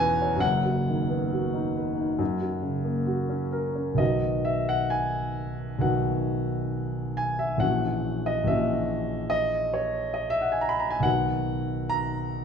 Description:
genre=classical, romantic nocturne for solo piano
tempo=68 BPM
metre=4/4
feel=uneven beats, rubato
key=B major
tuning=A4 = 440 Hz
part: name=warm concert grand piano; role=solo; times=0.0-12.4 s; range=F#1 to B5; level=-24 LUFS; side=equal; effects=none
room=wet recital hall reverb, RT60 1.7 s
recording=minimal, uncompressed stereo recording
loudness=-24 LUFS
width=side -7 dB against mid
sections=0.0-4.0 A section; 4.0-12.4 B section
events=none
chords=0.4 B/F#; 2.2 F#; 4.0 B; 7.6 F#7/A#; 11.1 B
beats=| 0.43 1.32 2.20 3.07 | 4.00 4.93 5.84 6.74 | 7.62 8.48 9.31 10.19 | 11.05 11.92

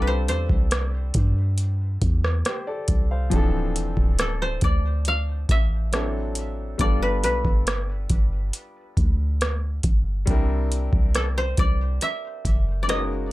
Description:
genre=contemporary R&B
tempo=69 BPM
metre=4/4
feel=straight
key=unclear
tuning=A4 = 436 Hz
part: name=koto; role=melody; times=0.0-13.1 s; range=A4 to F5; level=-28 LUFS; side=left 1 dB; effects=tape echo
part: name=clear baby grand piano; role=accompaniment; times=0.0-13.3 s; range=C#3 to F5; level=-31 LUFS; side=left 2 dB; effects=none
part: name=soft 808-style bass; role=bass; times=0.0-13.3 s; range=D1 to G2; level=-24 LUFS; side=equal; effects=none
part: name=booming analog drum machine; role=drums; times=0.3-13.1 s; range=hi-hat, kick drum, rim click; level=-22 LUFS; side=equal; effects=none
room=little or no reverb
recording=dry, gritty hardware recording, transformer saturation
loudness=-20 LUFS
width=side -18 dB against mid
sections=0.0-13.3 A section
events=none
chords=0.0 F69/C; 3.3 Dm7; 5.9 D7; 6.8 G7; 10.3 C7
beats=0.71 1.58 2.45 | 3.32 4.19 5.06 5.93 | 6.80 7.67 8.54 9.41 | 10.28 11.14 12.01 12.88

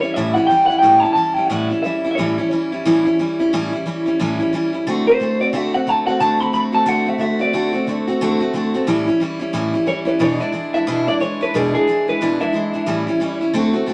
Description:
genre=rock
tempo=180 BPM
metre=4/4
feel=swing 60% on 8ths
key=A mixolydian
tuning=A4 = 440 Hz
part: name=electric guitar through a small old amp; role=melody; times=0.0-2.5, 5.1-7.8, 9.9-13.4 s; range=G#4 to B5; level=-20 LUFS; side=equal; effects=none
part: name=picked steel-string acoustic guitar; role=accompaniment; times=0.0-13.9 s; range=E2 to F#4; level=-20 LUFS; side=equal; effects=none
room=wet studio reverb, RT60 0.6 s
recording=none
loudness=-18 LUFS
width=mono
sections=0.0-13.9 A section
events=none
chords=0.0 A7; 4.9 D7; 8.9 A7; 10.2 E7; 12.9 A7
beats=0.16 0.49 | 0.83 1.17 1.50 1.84 | 2.17 2.51 2.85 3.18 | 3.52 3.85 4.19 4.52 | 4.86 5.19 5.53 5.86 | 6.20 6.53 6.86 7.20 | 7.53 7.87 8.20 8.54 | 8.87 9.20 9.54 9.87 | 10.20 10.54 10.87 11.21 | 11.54 11.87 12.21 12.54 | 12.87 13.21 13.54 13.87

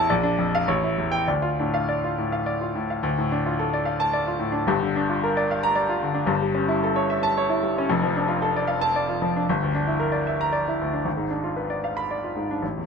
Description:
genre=classical, romantic character piece for solo piano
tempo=97-116 BPM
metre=3/4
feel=rubato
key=D minor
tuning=A4 = 440 Hz
part: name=clear grand piano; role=solo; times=0.0-12.9 s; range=F1 to B5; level=-21 LUFS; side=equal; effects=none
room=light reverb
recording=dark, warm production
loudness=-21 LUFS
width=side -5 dB against mid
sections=0.0-3.0 A section; 3.0-12.9 B section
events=none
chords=0.1 Bb; 0.7 A7; 1.3 Dm; 4.7 Gm7; 6.3 A7/G; 7.9 Dm/F; 9.5 Em7b5/G; 11.1 G#dim7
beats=0.10 0.67 | 1.27 1.88 2.46 | 3.04 3.59 4.13 | 4.69 5.23 5.76 | 6.30 6.83 7.36 | 7.89 8.41 8.95 | 9.48 10.01 10.53 | 11.06 11.58 12.10 | 12.62

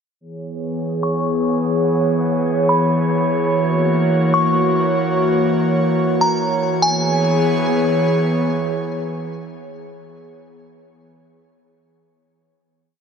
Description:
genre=hip hop, atmospheric cloud-rap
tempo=free time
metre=none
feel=none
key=C# dorian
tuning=A4 = 440 Hz
part: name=airy breathy pad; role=sustained chords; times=0.2-10.0 s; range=E3 to C#5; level=-17 LUFS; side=equal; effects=chorus, low-pass filter
part: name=delicate synth tine bell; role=melody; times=1.0-8.0 s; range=G#5 to C#6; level=-22 LUFS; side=equal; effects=chorus, phaser, low-pass filter, ping-pong delay
room=moderate huge ambient reverb, RT60 4.9 s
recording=none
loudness=-16 LUFS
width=side -6 dB against mid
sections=0.2-6.8 breakdown; 6.8-10.1 final chord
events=filter sweep 0.2-6.8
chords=0.2 C#m7; 3.5 F#7; 6.8 C#m7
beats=free time

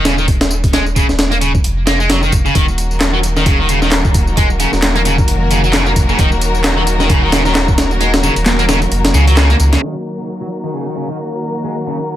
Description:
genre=breakbeat, breaks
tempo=132 BPM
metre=4/4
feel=swing 57% on 16ths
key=Eb minor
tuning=A4 = 441 Hz
part: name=distorted electric guitar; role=riff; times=0.0-12.0 s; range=Db3 to Bb3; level=-18 LUFS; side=equal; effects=overdrive, vintage 12-bit sampler grit, low-pass filter, digital delay
part: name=saturated sub bass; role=bass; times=0.0-9.8 s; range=Eb1 to Db2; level=-16 LUFS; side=equal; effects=none
part: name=breakbeat sampler-style drum kit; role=drums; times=0.1-9.8 s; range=hi-hat, kick drum, snare drum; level=-15 LUFS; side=equal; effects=none
part: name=electronic tambourine and handclaps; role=drums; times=0.1-9.8 s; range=none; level=-23 LUFS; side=equal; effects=low-pass filter on perc, low-pass filter on snare, low-pass filter on room
part: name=rich studio string section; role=sustained chords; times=2.5-12.2 s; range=Eb3 to Bb4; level=-20 LUFS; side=left 1 dB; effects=sidechain pumping
room=little or no reverb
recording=low-pass filter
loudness=-11 LUFS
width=side -12 dB against mid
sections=0.0-9.8 A section; 9.8-12.2 B section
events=filter sweep on distorted electric guitar 9.8-12.2; filter sweep 9.8-12.2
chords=0.0 Ebm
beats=0.28 | 0.73 1.19 1.64 2.10 | 2.55 3.01 3.46 3.92 | 4.37 4.82 5.28 5.73 | 6.19 6.64 7.10 7.55 | 8.01 8.46 8.91 9.37 | 9.82 10.28 10.73 11.19 | 11.64 12.10

